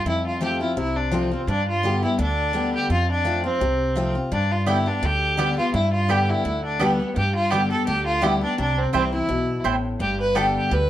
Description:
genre	bluegrass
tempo	169 BPM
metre	4/4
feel	swing 54% on 8ths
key	G mixolydian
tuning	A4 = 440 Hz
part	clear fiddle	melody	0.0-10.9 s	B3 to B4	-24 LUFS	equal	none
part	picked steel-string acoustic guitar	accompaniment	0.0-10.9 s	F2 to G4	-24 LUFS	left 2 dB	none
part	upright bass	bass	0.1-10.9 s	G1 to G2	-27 LUFS	right 1 dB	none
part	mandolin	stabs	4.7-10.5 s	B3 to G5	-24 LUFS	right 3 dB	none
room	moderate studio reverb, RT60 0.8 s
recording	none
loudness	-20 LUFS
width	side -12 dB against mid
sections	0.0-10.9 A section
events	none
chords	0.1 F; 1.5 G; 2.9 F; 4.3 G; 8.6 C; 10.0 G

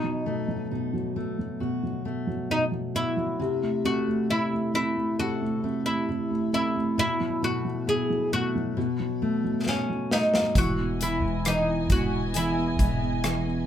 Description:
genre	pop ballad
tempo	67 BPM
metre	4/4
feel	straight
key	unclear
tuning	A4 = 440 Hz
part	oud	melody	0.0-13.7 s	C#4 to G#4	-28 LUFS	equal	none
part	felt-muted upright piano	accompaniment	0.0-13.7 s	B2 to C4	-29 LUFS	right 2 dB	none
part	fingerpicked steel-string acoustic guitar	arpeggios	0.0-13.7 s	B2 to A4	-32 LUFS	left 5 dB	none
part	modern studio drum kit	drums	9.7-13.4 s	hi-hat, kick drum, rim click, snare drum	-27 LUFS	equal	none
part	dark studio string section	sustained chords	10.6-13.7 s	E3 to G#5	-34 LUFS	right 1 dB	none
part	woody fretless electric bass	bass	10.6-13.7 s	E1	-29 LUFS	equal	none
room	moderate small room reverb, RT60 0.5 s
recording	band playing live in one room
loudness	-24 LUFS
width	side -10 dB against mid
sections	0.0-13.7 A section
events	drum fill 9.7-10.6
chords	0.0 B7; 3.4 Am/C; 7.0 B7sus4; 8.8 B7; 10.6 Emaj7

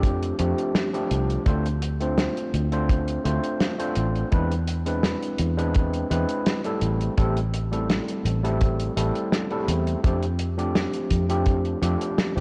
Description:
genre	vaporwave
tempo	84 BPM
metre	4/4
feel	straight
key	D minor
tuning	A4 = 440 Hz
part	overdriven tine electric piano	accompaniment	0.0-12.4 s	F3 to C5	-29 LUFS	equal	subtle chorus, analog delay
part	fingered electric bass	bass	0.0-12.4 s	F1 to F2	-27 LUFS	equal	tube saturation
part	kick drum	drums	0.0-11.6 s	none	-24 LUFS	equal	vintage 12-bit sampler grit
part	warm soul drum kit	drums	0.0-12.4 s	hi-hat, snare drum	-30 LUFS	equal	vintage 12-bit sampler grit
room	light reverb, small room ambience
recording	worn, warbling old tape, cassette tape, warbly pitch drift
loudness	-24 LUFS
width	mono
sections	0.0-12.4 A section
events	none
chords	0.0 F69; 1.5 Dm7; 4.3 E7b13; 6.8 Am7; 10.0 F69

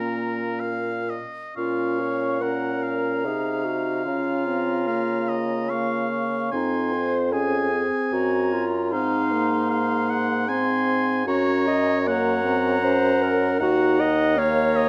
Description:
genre	classical, slow romantic movement for wind quintet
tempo	59-80 BPM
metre	3/4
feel	rubato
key	Bb minor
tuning	A4 = 438 Hz
part	concert flute	melody	0.0-14.9 s	Ab5 to Db6	-34 LUFS	equal	none
part	clear oboe	second line	0.0-14.9 s	Bb4 to Ab5	-31 LUFS	equal	none
part	mellow French horn	accompaniment	0.0-14.9 s	Bb3 to Eb4	-30 LUFS	equal	none
part	mellow clarinet	accompaniment	0.0-14.9 s	Db4 to Eb5	-28 LUFS	equal	none
part	mellow bassoon	bass	0.0-14.9 s	Eb2 to Db3	-29 LUFS	equal	none
room	moderate recital hall reverb, RT60 1.8 s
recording	none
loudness	-23 LUFS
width	mono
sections	0.0-1.6 A section; 1.6-14.9 B section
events	none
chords	0.0 Bbm; 4.1 Bbm/Db; 6.5 Fm; 8.9 Fm/Ab; 11.3 Gb; 13.6 Ebm7

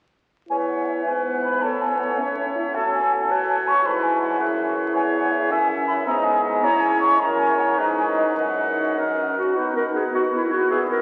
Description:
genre	quick classical-period movement for wind quintet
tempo	107 BPM (dotted quarters)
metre	6/8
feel	rubato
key	E major, B major from 5.0 s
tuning	A4 = 445 Hz
part	mellow hollow concert flute	melody	0.5-11.0 s	D#5 to C#6	-25 LUFS	equal	none
part	warm oboe	second line	0.5-11.0 s	A4 to F#5	-29 LUFS	equal	none
part	clear clarinet	accompaniment	0.5-11.0 s	D#4 to E5	-28 LUFS	equal	none
part	mellow French horn	accompaniment	0.5-11.0 s	B3 to F#4	-31 LUFS	equal	none
part	mellow bassoon	bass	0.5-11.0 s	E2 to C#3	-32 LUFS	equal	none
room	wet cathedral reverb, RT60 4.8 s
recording	very old 78 rpm record, vinyl crackle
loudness	-21 LUFS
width	mono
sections	0.5-9.6 A section; 9.6-11.0 B section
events	none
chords	0.5 E; 1.6 A; 2.7 B5/A; 3.9 E/G#; 5.0 C#m/E; 5.5 F#5; 6.1 G#m; 6.6 C#m; 7.2 F#7; 7.8 G#m; 8.4 B/F#; 9.0 F#; 9.6 B5

